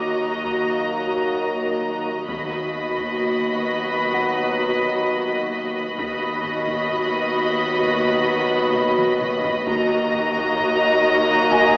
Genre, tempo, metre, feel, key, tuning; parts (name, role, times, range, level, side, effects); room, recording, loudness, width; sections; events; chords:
cinematic, suspense film score; 65 BPM; 4/4; straight; A4 = 440 Hz
warm studio violin section; melody; 0.0-11.8 s; Bb5 to B5; -24 LUFS; left 1 dB
warm studio violin section; second line; 0.0-11.8 s; Eb5; -24 LUFS; equal
dark studio viola section; accompaniment; 0.0-11.8 s; Gb4; -26 LUFS; equal
deep dark ambient pad; sustained chords; 0.0-11.8 s; Gb4 to Eb5; -29 LUFS; equal
warm French horn section; sustained chords; 0.0-11.8 s; Gb3 to B3; -26 LUFS; equal
warm studio cello section; bass; 0.0-11.8 s; Eb2; -30 LUFS; equal
warm studio double bass section; bass; 0.0-11.8 s; Eb2; -33 LUFS; equal
dark baby grand piano; texture; 0.0-11.8 s; F#5 to D6; -27 LUFS; left 1 dB
taiko ensemble; drums; 0.4-11.8 s; -38 LUFS; equal
timpani; percussion; 2.3-3.6 s; D#3; -38 LUFS; equal
wet scoring stage reverb, RT60 2.0 s; heard from further back in the room, AM radio sound; -18 LUFS; side -23 dB against mid
0.0-11.8 A section
drum fill 8.8-9.7
0.0 Ebm; 2.3 B/D#; 9.7 Ebm